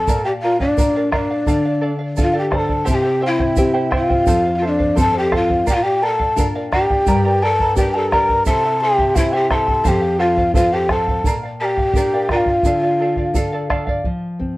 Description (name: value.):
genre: andean folk, Andean ensemble.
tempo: 86 BPM.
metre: 2/4.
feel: straight.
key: unclear.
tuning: A4 = 439 Hz.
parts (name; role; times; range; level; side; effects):
breathy mellow large quena; melody; 0.0-13.4 s; D5 to Bb5; -20 LUFS; left 1 dB; tape echo.
breathy bright large pan pipes; second line; 0.0-13.4 s; D4 to Bb4; -20 LUFS; left 1 dB; none.
charango; accompaniment; 0.0-14.1 s; E4 to C6; -25 LUFS; right 2 dB; none.
nylon-string guitar; accompaniment; 0.0-14.6 s; F2 to F5; -23 LUFS; left 1 dB; none.
bombo; percussion; 0.1-14.6 s; none; -20 LUFS; right 1 dB; none.
tube shaker; percussion; 0.1-13.5 s; none; -36 LUFS; right 6 dB; none.
room: moderate studio reverb, RT60 0.6 s.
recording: worn, warbling old tape, cassette tape, warbly pitch drift.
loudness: -15 LUFS.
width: side -19 dB against mid.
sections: 0.0-2.9 A section; 2.9-14.1 A section.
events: nylon-string guitar fill 1.8-2.9.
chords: 0.1 Bb; 1.5 Dm; 2.9 C; 4.3 F; 5.7 Bb; 7.1 Gm; 8.5 C; 9.9 F; 11.3 Bb; 12.7 Dm; 14.1 F5.